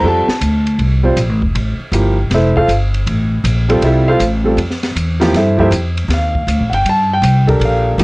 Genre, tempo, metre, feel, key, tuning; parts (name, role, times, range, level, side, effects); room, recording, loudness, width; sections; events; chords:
modal jazz; 158 BPM; 4/4; swing 66% on 8ths; F major; A4 = 437 Hz
warm grand piano; accompaniment; 0.0-8.0 s; F3 to A5; -14 LUFS; right 1 dB
upright bass; bass; 0.0-8.0 s; F1 to G2; -14 LUFS; equal; tube saturation
open jazz drum kit; drums; 0.3-8.0 s; hi-hat, kick drum, ride cymbal, snare drum; -22 LUFS; equal; vintage 12-bit sampler grit
light reverb; worn, warbling old tape, cassette tape, warbly pitch drift; -12 LUFS; side -24 dB against mid
0.0-8.0 A section
0.0 Fmaj9; 6.1 Ebmaj9